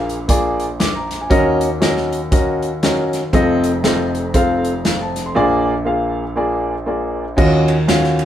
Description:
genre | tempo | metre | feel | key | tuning
uptempo gospel | 118 BPM | 4/4 | swing 60% on 8ths | Eb minor | A4 = 439 Hz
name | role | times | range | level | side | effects
warm concert grand piano | accompaniment | 0.0-8.2 s | F1 to D6 | -16 LUFS | equal | none
natural country drum kit | drums | 0.1-8.2 s | crash cymbal, hi-hat, kick drum, ride cymbal, snare drum | -19 LUFS | equal | none
room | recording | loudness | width
moderate stone room reverb, RT60 1.4 s | band playing live in one room | -15 LUFS | side -11 dB against mid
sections
0.0-7.4 A section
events
none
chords
0.0 Bb7; 1.3 Ebm7; 3.3 F7; 5.4 Bb7; 7.4 Ebm9

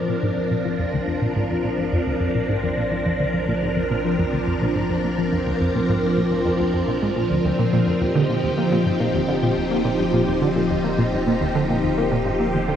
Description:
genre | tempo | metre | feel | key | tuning
ambient, sequencer-driven space music | 106 BPM | 4/4 | straight | unclear | A4 = 439 Hz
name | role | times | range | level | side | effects
phased string machine | sustained chords | 0.0-12.8 s | F3 to Bb4 | -22 LUFS | left 1 dB | ensemble chorus, phaser
round analog bass | bass | 0.0-12.8 s | Eb1 to Bb1 | -36 LUFS | equal | none
bubbling stepped-filter texture | texture | 0.0-12.8 s | C4 to C5 | -29 LUFS | right 2 dB | chorus, built-in reverb
tight sequenced synth | riff | 0.1-12.8 s | D2 to Bb3 | -23 LUFS | equal | chorus, phaser, analog delay
room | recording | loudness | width
wet cathedral reverb, RT60 5.1 s | in a vast, echoing space | -19 LUFS | side -9 dB against mid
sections
0.0-12.8 A section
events
fade-in on analog synth bass 0.0-12.8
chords
0.0 Bb; 8.0 Ebadd9

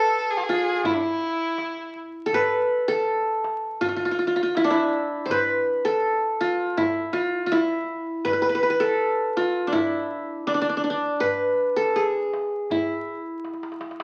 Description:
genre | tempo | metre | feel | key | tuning
Arabic maqam ensemble | 81 BPM | 4/4 | straight | E maqam hijaz | A4 = 440 Hz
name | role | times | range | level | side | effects
qanun | melody | 0.0-14.0 s | D4 to C5 | -24 LUFS | equal | none
clear violin | second line | 0.0-2.0 s | D4 to A4 | -29 LUFS | equal | none
darbuka | percussion | 0.1-14.0 s | none | -44 LUFS | equal | none
room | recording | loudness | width
moderate large studio reverb, RT60 1.0 s | very old 78 rpm record, vinyl crackle | -24 LUFS | mono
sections
0.0-2.3 A section; 2.3-14.0 B section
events
drum fill 13.4-14.0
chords
none

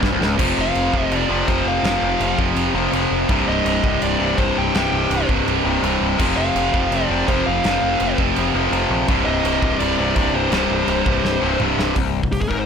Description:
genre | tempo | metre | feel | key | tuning
heavy metal | 166 BPM | 4/4 | straight | unclear | A4 = 443 Hz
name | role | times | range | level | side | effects
distorted electric guitar | riff | 0.0-12.7 s | C2 to F3 | -22 LUFS | left 13 dB | overdrive
tight distorted guitar | riff | 0.0-12.0 s | C2 to F3 | -22 LUFS | right 14 dB | distortion
growling picked electric bass | bass | 0.0-12.7 s | C1 to Bb1 | -25 LUFS | equal | overdrive, transformer saturation
modern studio drum kit | drums | 0.0-12.6 s | china cymbal, crash cymbal, hi-hat, kick drum, snare drum, toms | -24 LUFS | right 1 dB | none
high-gain lead guitar | melody | 0.6-12.7 s | G4 to G5 | -25 LUFS | equal | distortion, digital delay
room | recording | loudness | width
light reverb | blown-out, overdriven recording, overdrive | -16 LUFS | side -7 dB against mid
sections
0.4-12.0 A section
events
drum fill 0.0-0.4, 11.2-12.0; half time 0.4-12.0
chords
0.4 F5; 3.3 C5; 6.2 F5; 9.1 C5

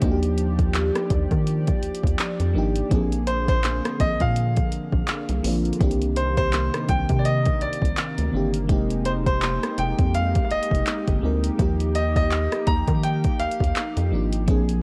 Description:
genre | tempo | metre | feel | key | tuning
contemporary R&B | 83 BPM | 4/4 | swing 58% on 16ths | unclear | A4 = 440 Hz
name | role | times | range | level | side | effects
FM electric piano with soft pad layer | accompaniment | 0.0-14.8 s | Eb3 to Bb4 | -30 LUFS | equal | chorus
chorused pulse-width pad | sustained chords | 0.0-14.8 s | C3 to D5 | -34 LUFS | equal | none
rubbery square bass | bass | 0.0-14.8 s | F1 to Eb3 | -27 LUFS | equal | none
smooth R&B drum kit | drums | 0.0-14.8 s | handclaps, hi-hat, kick drum, rim click | -26 LUFS | equal | overdrive
clear concert grand piano | melody | 3.3-14.1 s | C5 to Bb5 | -29 LUFS | equal | delay
room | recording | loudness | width
light reverb | worn, warbling old tape, cassette tape, warbly pitch drift | -23 LUFS | mono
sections
0.0-14.8 A section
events
none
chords
0.0 Ebmaj7; 2.9 Bb7; 5.8 Cm7; 8.7 Fm11; 11.6 Ebmaj7

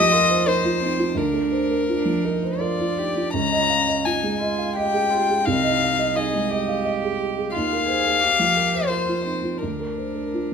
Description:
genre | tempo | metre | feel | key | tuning
neoclassical piano and strings | 85 BPM | 3/4 | rubato | Eb major | A4 = 440 Hz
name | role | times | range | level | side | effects
warm violin | melody | 0.0-10.5 s | Bb4 to Bb5 | -22 LUFS | left 5 dB | none
rich cello | second line | 0.0-10.5 s | C4 to Ab4 | -29 LUFS | right 5 dB | none
felt-muted upright piano | accompaniment | 0.0-10.5 s | C2 to F5 | -23 LUFS | right 3 dB | none
room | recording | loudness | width
moderate recital hall reverb, RT60 1.5 s | minimal, uncompressed stereo recording | -19 LUFS | side -6 dB against mid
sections
0.0-10.5 A section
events
none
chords
0.0 Ebsus2; 1.2 Bb/D; 3.3 Dbadd9; 5.5 Ab/C; 7.5 Ebsus2; 9.6 Bb/D

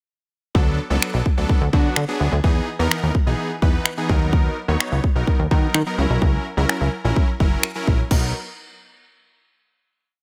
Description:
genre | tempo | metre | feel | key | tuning
dance-pop | 127 BPM | 4/4 | straight | B major | A4 = 440 Hz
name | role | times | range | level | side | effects
big bright polysynth | accompaniment | 0.5-8.3 s | E3 to C#5 | -27 LUFS | equal | none
plucky analog bass | bass | 0.5-8.3 s | F#1 to D#3 | -23 LUFS | equal | sidechain pumping
house drum kit | drums | 0.5-8.2 s | crash cymbal, finger snaps, kick drum | -22 LUFS | equal | none
room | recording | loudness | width
little or no reverb | none | -20 LUFS | mono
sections
0.6-8.1 verse; 8.1-10.0 final chord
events
none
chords
0.6 D6; 2.4 Emaj7; 4.1 Bmaj7; 6.0 F#7; 8.1 Bmaj7

